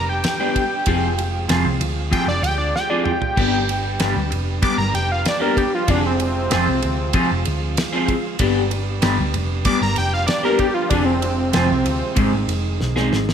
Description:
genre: psychedelic rock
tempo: 96 BPM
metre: 4/4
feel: straight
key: G phrygian dominant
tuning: A4 = 440 Hz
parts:
  - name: fat analog lead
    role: melody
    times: 0.0-12.4 s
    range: C4 to D6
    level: -22 LUFS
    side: right 1 dB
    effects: analog delay
  - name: overdriven combo organ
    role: sustained chords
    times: 0.0-13.3 s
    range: Eb3 to B4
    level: -31 LUFS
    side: right 6 dB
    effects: none
  - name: hollow-body short-scale picked electric bass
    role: bass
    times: 0.0-13.3 s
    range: F1 to D2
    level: -23 LUFS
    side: equal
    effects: none
  - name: damped 70s drum kit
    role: drums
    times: 0.2-13.3 s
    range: crash cymbal, kick drum, ride cymbal, snare drum, toms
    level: -24 LUFS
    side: right 1 dB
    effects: none
  - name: electric guitar through a small old amp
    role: riff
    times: 0.4-13.2 s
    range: F3 to Ab4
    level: -22 LUFS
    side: left 2 dB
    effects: phaser
room: moderate concert hall reverb, RT60 2.0 s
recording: none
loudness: -17 LUFS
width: side -8 dB against mid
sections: 0.0-13.3 A section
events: analog synth lead solo 0.0-13.3; drum fill 2.8-3.4, 12.8-13.3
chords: 0.0 G; 0.9 Fm; 3.4 G; 5.9 Fm; 8.4 G; 10.9 Fm; 12.2 Ab

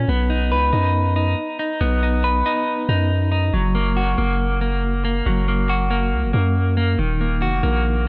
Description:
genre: hip hop, drill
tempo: 139 BPM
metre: 4/4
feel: half-time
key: unclear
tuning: A4 = 440 Hz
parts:
  - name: clean electric guitar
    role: arpeggios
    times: 0.0-8.1 s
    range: Eb3 to B4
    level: -23 LUFS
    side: equal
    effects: harmonic tremolo, delay
  - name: long sustained 808-style bass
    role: bass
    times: 0.0-8.1 s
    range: Eb1 to F#2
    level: -22 LUFS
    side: equal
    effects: none
room: light reverb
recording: none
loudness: -20 LUFS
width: mono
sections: 0.0-8.1 A section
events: none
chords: 0.1 B; 3.5 Gb; 7.0 Ebm

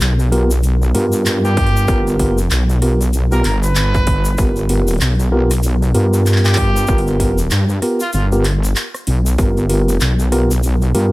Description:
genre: glitch hop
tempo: 96 BPM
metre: 4/4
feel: swing 60% on 16ths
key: unclear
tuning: A4 = 441 Hz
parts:
  - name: wobble bass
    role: bass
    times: 0.0-11.1 s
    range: G1 to G2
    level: -15 LUFS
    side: equal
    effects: chorus, overdrive
  - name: dubstep drum kit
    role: drums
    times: 0.0-11.1 s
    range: handclaps, hi-hat, rim click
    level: -24 LUFS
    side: equal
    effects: small room ambience
  - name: tube shaker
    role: percussion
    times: 0.0-10.9 s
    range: none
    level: -29 LUFS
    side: left 3 dB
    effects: none
  - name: mellow tine electric piano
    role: stabs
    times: 0.3-11.1 s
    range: B3 to A#4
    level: -19 LUFS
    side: equal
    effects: sidechain pumping, digital delay
  - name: clear trumpet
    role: melody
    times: 1.5-8.3 s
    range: F4 to B4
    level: -24 LUFS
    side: right 1 dB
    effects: digital delay
  - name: electronic kick drum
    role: drums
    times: 1.6-9.5 s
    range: none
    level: -18 LUFS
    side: equal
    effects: distortion, small room ambience
room: little or no reverb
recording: none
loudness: -13 LUFS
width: side -19 dB against mid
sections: 0.0-11.1 A section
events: kick drops out 8.8-9.4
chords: 0.0 G7#9

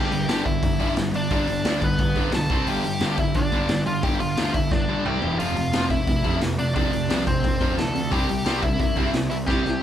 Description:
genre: punk rock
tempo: 176 BPM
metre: 4/4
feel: straight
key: G mixolydian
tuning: A4 = 440 Hz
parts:
  - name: nasal lead guitar with a parked wah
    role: melody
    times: 0.0-9.8 s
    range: B3 to A5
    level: -27 LUFS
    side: left 1 dB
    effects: overdrive
  - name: crunchy overdriven guitar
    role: riff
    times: 0.0-9.8 s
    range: E2 to C4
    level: -28 LUFS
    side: left 8 dB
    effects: none
  - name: sludgy distorted guitar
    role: riff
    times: 0.0-9.8 s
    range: E2 to C4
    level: -27 LUFS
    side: right 8 dB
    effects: overdrive
  - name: fuzz picked electric bass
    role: bass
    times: 0.0-9.8 s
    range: E1 to D2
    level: -30 LUFS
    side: equal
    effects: overdrive
  - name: raw garage drum kit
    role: drums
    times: 0.1-9.7 s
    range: hi-hat, kick drum, snare drum, toms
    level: -25 LUFS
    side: equal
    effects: none
room: light reverb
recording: band playing live in one room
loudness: -20 LUFS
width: side -10 dB against mid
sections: 0.0-9.8 A section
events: drum fill 4.7-5.4, 9.5-9.8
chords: 0.0 G; 2.5 C5; 2.7 G5; 5.1 C5; 5.2 E5; 5.4 F; 8.1 C

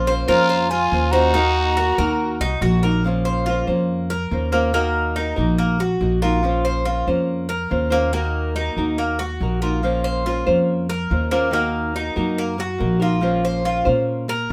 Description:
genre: latin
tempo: 141 BPM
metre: 4/4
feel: straight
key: Bb minor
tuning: A4 = 440 Hz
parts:
  - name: nylon-string guitar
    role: accompaniment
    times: 0.0-14.5 s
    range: Eb3 to C5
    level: -25 LUFS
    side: equal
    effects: none
  - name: Cuban tres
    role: arpeggios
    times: 0.0-14.5 s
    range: Bb3 to C5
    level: -26 LUFS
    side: equal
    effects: none
  - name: upright bass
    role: bass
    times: 0.0-14.5 s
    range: Bb1 to Bb2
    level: -25 LUFS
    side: equal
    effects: none
  - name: breathy mellow silver concert flute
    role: melody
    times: 0.3-2.6 s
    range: Ab5 to Bb5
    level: -25 LUFS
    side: equal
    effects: none
  - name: growling trumpet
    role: second line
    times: 0.3-2.6 s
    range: F4 to Gb4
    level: -25 LUFS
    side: equal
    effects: none
room: light reverb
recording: none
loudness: -20 LUFS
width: mono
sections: 0.0-3.0 A section; 3.0-14.5 B section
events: none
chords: 0.0 Bbmadd9; 1.3 Ebm; 3.0 Bbmadd9; 4.7 Ebm; 6.4 Bbmadd9; 8.1 Ebm; 9.8 Bbmadd9; 11.5 Ebm; 13.2 Bbmadd9

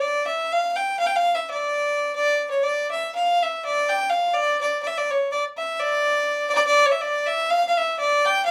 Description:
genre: balkan folk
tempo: 250 BPM (eighths)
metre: 9/8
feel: straight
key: D harmonic minor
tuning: A4 = 439 Hz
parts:
  - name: rich fiddle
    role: solo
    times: 0.0-8.5 s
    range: C#5 to G5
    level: -22 LUFS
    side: equal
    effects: none
room: light reverb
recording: close, detailed microphones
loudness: -22 LUFS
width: mono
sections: 0.0-2.2 A section; 2.2-8.5 B section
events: none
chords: none

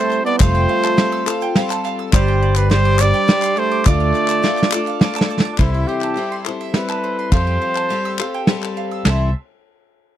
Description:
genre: indie folk with a building arrangement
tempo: 104 BPM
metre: 3/4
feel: straight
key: C major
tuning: A4 = 440 Hz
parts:
  - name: mellow trumpet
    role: melody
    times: 0.0-8.5 s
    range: D4 to D5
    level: -20 LUFS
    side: equal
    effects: none
  - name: warm trombone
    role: second line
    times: 0.0-5.0 s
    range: G3 to B3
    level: -23 LUFS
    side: right 12 dB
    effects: none
  - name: picked twelve-string acoustic guitar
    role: accompaniment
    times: 0.0-9.3 s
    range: C3 to C5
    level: -24 LUFS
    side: left 6 dB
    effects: none
  - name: mandolin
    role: arpeggios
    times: 0.0-9.3 s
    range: C5 to E6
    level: -27 LUFS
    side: right 10 dB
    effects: none
  - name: group handclap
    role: percussion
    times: 0.1-9.3 s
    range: none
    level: -26 LUFS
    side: left 16 dB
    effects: none
  - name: tube shaker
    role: percussion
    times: 0.1-5.4 s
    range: none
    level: -34 LUFS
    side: right 34 dB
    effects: none
  - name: fingered electric bass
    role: bass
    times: 0.4-9.3 s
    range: F1 to F2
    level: -17 LUFS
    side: equal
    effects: none
  - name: soft brush drum kit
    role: drums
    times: 0.4-9.2 s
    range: hi-hat, kick drum, ride cymbal, snare drum, splash cymbal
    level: -15 LUFS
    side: right 1 dB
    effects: none
room: little or no reverb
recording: dry, close 1970s-style studio recording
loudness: -15 LUFS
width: side -11 dB against mid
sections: 0.0-5.6 A section; 5.6-9.1 B section; 9.1-10.2 C section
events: drum fill 4.4-5.6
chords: 0.4 Fadd9; 2.1 Gsus4; 3.9 Dm; 5.6 C6; 7.3 Fadd9; 9.1 C6

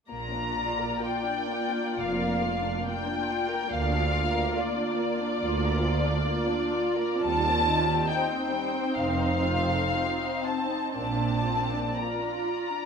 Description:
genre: classical, slow romantic movement for string orchestra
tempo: 58-73 BPM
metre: 4/4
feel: rubato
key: Bb major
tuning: A4 = 443 Hz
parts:
  - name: muted studio violin section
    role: melody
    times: 0.1-12.9 s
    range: D5 to Bb5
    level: -29 LUFS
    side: left 2 dB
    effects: none
  - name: muted studio violin section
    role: second line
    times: 0.1-12.9 s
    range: G3 to D5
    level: -32 LUFS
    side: left 4 dB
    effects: none
  - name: muted symphonic viola section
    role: accompaniment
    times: 0.1-12.9 s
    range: Bb3 to F4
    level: -31 LUFS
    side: right 2 dB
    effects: none
  - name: muted studio cello section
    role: bass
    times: 0.1-11.8 s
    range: D2 to Bb2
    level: -35 LUFS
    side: right 3 dB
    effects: none
  - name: muted symphonic double bass section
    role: bass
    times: 0.1-11.8 s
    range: F1 to Eb2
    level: -33 LUFS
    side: right 3 dB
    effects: none
room: wet recital hall reverb, RT60 1.5 s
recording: none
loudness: -25 LUFS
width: side -6 dB against mid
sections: 0.1-12.9 A section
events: none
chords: 0.1 Bb; 3.7 Bb/D; 7.2 Cm/Eb; 9.0 F7; 11.0 Bb

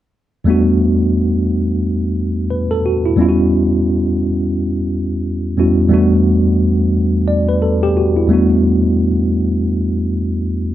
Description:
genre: R&B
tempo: 88 BPM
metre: 4/4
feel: swing 60% on 16ths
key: E dorian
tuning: A4 = 443 Hz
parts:
  - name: tine electric piano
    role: solo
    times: 0.4-10.7 s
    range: E2 to D5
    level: -13 LUFS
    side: equal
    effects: overdrive, fast stereo tremolo
room: moderate small room reverb, RT60 0.5 s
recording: dark, warm production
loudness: -13 LUFS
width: side -12 dB against mid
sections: 0.5-10.7 A section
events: none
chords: 0.5 Em11; 3.2 Em69; 5.9 Em11

